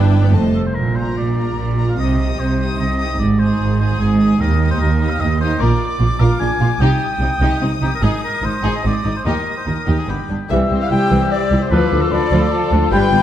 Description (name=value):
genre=cinematic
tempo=148 BPM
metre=3/4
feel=straight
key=Bb mixolydian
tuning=A4 = 444 Hz
part: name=warm chamber violin section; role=melody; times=0.0-13.2 s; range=A4 to Eb6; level=-28 LUFS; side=left 7 dB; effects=none
part: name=rich studio violin section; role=second line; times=0.0-13.2 s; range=B3 to Eb5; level=-29 LUFS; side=left 4 dB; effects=none
part: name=warm studio viola section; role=accompaniment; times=0.0-13.2 s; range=E3 to F4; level=-24 LUFS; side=equal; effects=none
part: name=rich symphonic double bass section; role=bass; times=0.0-13.2 s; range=F1 to Eb2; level=-19 LUFS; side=right 2 dB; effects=none
part: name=warm symphonic cello section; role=bass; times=0.0-13.2 s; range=C2 to C3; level=-19 LUFS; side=right 2 dB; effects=none
part: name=warm oboe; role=second line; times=0.6-13.2 s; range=G4 to Ab5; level=-24 LUFS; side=equal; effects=none
part: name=mellow clarinet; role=second line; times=10.5-13.2 s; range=A4 to G5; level=-21 LUFS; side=left 4 dB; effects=none
part: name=mellow hollow silver concert flute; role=second line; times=10.5-13.2 s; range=A5 to E6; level=-26 LUFS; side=left 4 dB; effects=none
part: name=mellow French horn section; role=sustained chords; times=10.5-13.2 s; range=F3 to F4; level=-22 LUFS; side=left 5 dB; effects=none
part: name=bright trumpet section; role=stabs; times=10.5-13.2 s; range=G4 to B4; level=-24 LUFS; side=equal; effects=none
room=moderate concert hall reverb, RT60 1.9 s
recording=dark, warm production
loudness=-14 LUFS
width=side -11 dB against mid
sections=0.8-10.5 A section; 10.5-13.2 B section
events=none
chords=0.3 F7; 0.8 Bb; 2.0 Cm; 3.2 Ab; 4.4 Eb; 5.6 Bb; 6.8 Cm; 8.0 Ab; 9.3 Eb; 10.1 G; 10.5 C; 11.7 Dm